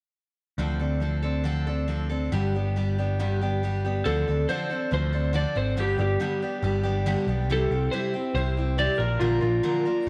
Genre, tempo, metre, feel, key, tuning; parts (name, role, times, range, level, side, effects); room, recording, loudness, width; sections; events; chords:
folk rock and heartland rock; 139 BPM; 4/4; straight; D minor; A4 = 439 Hz
picked steel-string acoustic guitar; accompaniment; 0.6-10.1 s; G2 to Bb4; -31 LUFS; equal
picked electric bass; bass; 0.6-10.1 s; G1 to D2; -28 LUFS; equal
electric slide guitar; melody; 4.1-10.1 s; F4 to D5; -30 LUFS; equal
light reverb, studio reverb; -26 LUFS; mono
0.6-4.0 A section; 4.0-10.1 B section
0.6 Dm7; 2.3 G; 4.0 Dm7; 5.8 G; 7.5 C; 9.0 Bb